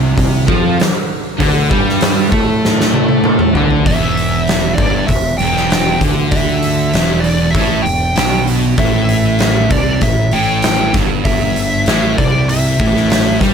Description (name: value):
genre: stoner and doom metal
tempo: 97 BPM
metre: 4/4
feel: straight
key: E phrygian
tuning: A4 = 440 Hz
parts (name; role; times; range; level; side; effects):
- crunchy overdriven guitar; riff; 0.0-3.8 s; C3 to A3; -20 LUFS; left 2 dB; none
- thick fuzz guitar; riff; 0.0-13.5 s; E2 to A3; -19 LUFS; left 9 dB; distortion
- thick fuzz guitar; riff; 0.0-13.5 s; E2 to A3; -18 LUFS; right 11 dB; distortion
- fuzz fingered electric bass; bass; 0.0-13.5 s; E1 to A2; -19 LUFS; equal; overdrive
- oversized low-tuned drum kit; drums; 0.2-13.5 s; hi-hat, kick drum, snare drum, toms; -16 LUFS; equal; none
- fuzz lead guitar; melody; 3.9-13.4 s; D5 to G5; -18 LUFS; equal; wah, distortion, tape echo
room: little or no reverb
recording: none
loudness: -11 LUFS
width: side -7 dB against mid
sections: 0.0-3.9 A section; 3.9-13.5 B section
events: drum fill 2.6-3.9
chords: 0.0 C5; 3.9 Em; 8.8 A5